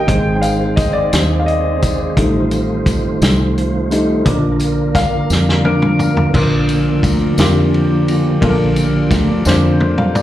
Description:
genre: slow gospel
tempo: 58 BPM (dotted quarters)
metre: 6/8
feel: straight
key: unclear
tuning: A4 = 440 Hz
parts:
  - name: warm upright piano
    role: accompaniment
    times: 0.0-10.2 s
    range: Bb2 to G5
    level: -18 LUFS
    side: left 2 dB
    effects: slapback echo
  - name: dark French horn section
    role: sustained chords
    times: 0.0-10.2 s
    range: Eb3 to F4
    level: -25 LUFS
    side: left 4 dB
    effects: none
  - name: mellow tonewheel organ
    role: sustained chords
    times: 0.0-9.8 s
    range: D3 to C5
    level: -18 LUFS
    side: right 2 dB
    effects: slow rotary speaker, chorus vibrato
  - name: fingered electric bass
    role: bass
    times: 0.0-10.2 s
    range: Ab1 to F2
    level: -18 LUFS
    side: equal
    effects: none
  - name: warm soul drum kit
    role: drums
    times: 0.1-10.2 s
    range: crash cymbal, hi-hat, kick drum, ride cymbal, snare drum, toms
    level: -18 LUFS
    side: equal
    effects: none
  - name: tambourine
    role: percussion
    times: 0.4-10.2 s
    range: none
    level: -30 LUFS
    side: left 4 dB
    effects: none
room: wet club reverb, RT60 0.7 s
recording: live gig heard through the venue's PA, club reverb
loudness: -12 LUFS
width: side -13 dB against mid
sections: 0.0-6.3 A section; 6.3-10.2 B section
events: upright piano solo 0.0-6.3; drum fill 5.3-6.3, 9.5-10.2; tonewheel organ solo 6.3-10.2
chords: 0.1 Ab; 2.2 F7/A; 4.3 Bb

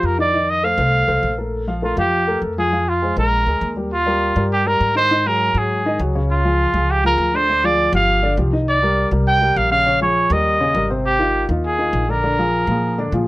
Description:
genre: Afro-Cuban jazz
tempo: 202 BPM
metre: 4/4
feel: straight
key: Bb major, Eb major from 3.9 s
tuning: A4 = 440 Hz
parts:
  - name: warm trumpet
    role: melody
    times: 0.0-13.1 s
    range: F4 to G5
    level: -17 LUFS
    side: right 1 dB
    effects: none
  - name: dark baby grand piano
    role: accompaniment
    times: 0.0-13.3 s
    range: C3 to F5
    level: -22 LUFS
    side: left 2 dB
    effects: none
  - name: upright bass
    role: bass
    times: 0.0-13.3 s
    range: G1 to Bb2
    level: -22 LUFS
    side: equal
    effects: none
room: light reverb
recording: close, detailed microphones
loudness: -15 LUFS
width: side -18 dB against mid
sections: 0.0-3.9 A section; 3.9-13.3 B section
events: none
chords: 0.3 F7; 1.5 Bb5; 2.7 Fm; 3.3 Bb7; 3.9 Ebadd9; 5.1 Ab5; 6.3 Db; 7.5 Ddim; 8.1 G5; 8.7 Cm9; 9.9 Bbm7; 10.5 Eb7; 11.1 Ab6; 12.2 Bb7

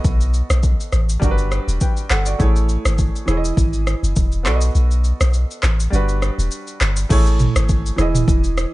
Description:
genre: afrobeats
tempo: 102 BPM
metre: 4/4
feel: swing 55% on 16ths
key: E major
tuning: A4 = 439 Hz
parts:
  - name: clear concert grand piano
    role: accompaniment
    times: 0.0-8.7 s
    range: E3 to G5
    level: -25 LUFS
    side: right 3 dB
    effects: none
  - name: punchy sub bass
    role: bass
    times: 0.0-8.7 s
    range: E1 to B1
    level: -17 LUFS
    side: equal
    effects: none
  - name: afro-pop drum kit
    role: drums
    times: 0.0-8.7 s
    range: crash cymbal, handclaps, kick drum, rim click, shaker, toms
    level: -19 LUFS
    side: equal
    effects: overdrive
room: little or no reverb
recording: nothing above 10.7 kHz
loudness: -15 LUFS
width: side -18 dB against mid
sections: 0.0-7.1 A section; 7.1-8.7 B section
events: kick muted 4.8-7.1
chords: 0.0 B7; 1.2 Gmaj7; 2.4 Amaj7; 3.3 Emaj7; 4.5 B7; 5.9 Gmaj7; 7.1 Amaj7; 8.0 Emaj7

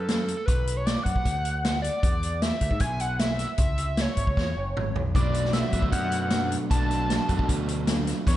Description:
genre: indie rock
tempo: 154 BPM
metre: 4/4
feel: straight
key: unclear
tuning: A4 = 441 Hz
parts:
  - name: overdriven synth lead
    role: melody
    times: 0.0-8.4 s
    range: A4 to A5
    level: -30 LUFS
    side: equal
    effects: distortion, slapback echo
  - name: growling picked electric bass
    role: bass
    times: 0.0-8.4 s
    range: F#1 to G#2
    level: -29 LUFS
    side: equal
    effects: overdrive
  - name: vintage drum kit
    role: drums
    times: 0.1-8.4 s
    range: hi-hat, kick drum, snare drum, toms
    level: -26 LUFS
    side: equal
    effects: none
  - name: overdriven semi-hollow guitar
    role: riff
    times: 5.1-8.4 s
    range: B2 to G#4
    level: -30 LUFS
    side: right 7 dB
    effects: wide subtle chorus, slapback echo
  - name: mellow electric guitar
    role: riff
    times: 5.2-8.4 s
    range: B2 to A4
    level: -32 LUFS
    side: left 6 dB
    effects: lush chorus
room: moderate recital hall reverb, RT60 1.5 s, small room ambience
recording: big arena sound, nothing above 10.8 kHz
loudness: -23 LUFS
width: side -13 dB against mid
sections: 0.0-8.4 A section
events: drum fill 4.4-5.2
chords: 0.0 Bm7; 2.0 E7(no3); 3.6 C#m; 5.2 Bm7

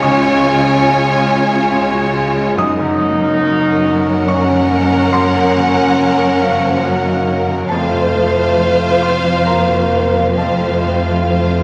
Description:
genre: cinematic, emotional film score for orchestra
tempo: 70 BPM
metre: 3/4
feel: uneven beats, rubato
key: unclear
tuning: A4 = 438 Hz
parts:
  - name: dark studio violin section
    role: melody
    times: 0.0-11.6 s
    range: F5 to Ab5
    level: -22 LUFS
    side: equal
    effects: none
  - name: rich studio violin section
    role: second line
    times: 0.0-11.6 s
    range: Bb4 to Db5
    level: -21 LUFS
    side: equal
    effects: none
  - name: felt-muted upright piano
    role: accompaniment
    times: 0.0-11.6 s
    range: Db2 to Eb6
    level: -23 LUFS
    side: equal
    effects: none
  - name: warm studio viola section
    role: accompaniment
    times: 0.0-11.6 s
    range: Db4 to F4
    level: -27 LUFS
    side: equal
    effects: none
  - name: warm French horn section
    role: sustained chords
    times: 0.0-11.6 s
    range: F3 to Eb4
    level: -20 LUFS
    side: equal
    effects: none
  - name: concert harp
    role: arpeggios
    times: 0.0-11.6 s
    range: F2 to F5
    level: -27 LUFS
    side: equal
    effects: none
  - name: rich studio double bass section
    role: bass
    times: 0.0-11.6 s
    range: F1 to Db2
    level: -29 LUFS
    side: equal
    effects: none
  - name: warm studio cello section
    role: bass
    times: 0.0-11.6 s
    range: F2 to Db3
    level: -22 LUFS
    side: equal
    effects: none
room: wet scoring stage reverb, RT60 1.7 s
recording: none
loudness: -14 LUFS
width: mono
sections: 0.0-11.6 A section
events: none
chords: 0.0 Db; 2.6 Gb; 7.7 F

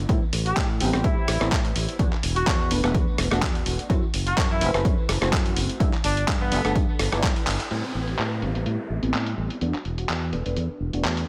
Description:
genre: filtered disco house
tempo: 126 BPM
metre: 4/4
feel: swing 55% on 16ths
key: A dorian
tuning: A4 = 439 Hz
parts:
  - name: funky polysynth comp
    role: accompaniment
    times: 0.0-11.3 s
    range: G3 to B4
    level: -32 LUFS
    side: equal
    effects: chorus, phaser, sidechain pumping, low-pass filter
  - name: fingered electric bass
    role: bass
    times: 0.0-11.2 s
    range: E1 to A2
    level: -29 LUFS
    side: equal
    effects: sidechain pumping, low-pass filter
  - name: dusty soul sampler-style drum kit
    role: drums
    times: 0.1-11.3 s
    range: crash cymbal, handclaps, hi-hat, rim click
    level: -31 LUFS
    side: equal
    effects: sidechain pumping on hats, low-pass filter on hats, low-pass filter on snare, sidechain pumping on cymbals, low-pass filter on cymbals
  - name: electronic kick drum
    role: drums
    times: 0.1-7.3 s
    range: none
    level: -27 LUFS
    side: equal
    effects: none
  - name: tambourine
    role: percussion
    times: 0.1-7.7 s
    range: none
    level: -49 LUFS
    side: equal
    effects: none
  - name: clear horn section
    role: melody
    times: 0.5-10.3 s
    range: B3 to G4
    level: -33 LUFS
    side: equal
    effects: sidechain pumping, low-pass filter, digital delay
  - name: downlifter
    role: sound effects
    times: 7.7-11.3 s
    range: none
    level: -38 LUFS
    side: equal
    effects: none
room: light reverb, digital ambience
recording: none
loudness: -24 LUFS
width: mono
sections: 0.0-7.7 A section; 7.7-11.3 B section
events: filter sweep 0.0-7.7, 7.7-11.3; drum fill 7.5; band accent 7.5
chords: 0.1 Am9; 2.0 E9sus4; 3.9 F#m7b5; 5.8 G69; 7.7 Am9; 9.6 E9sus4

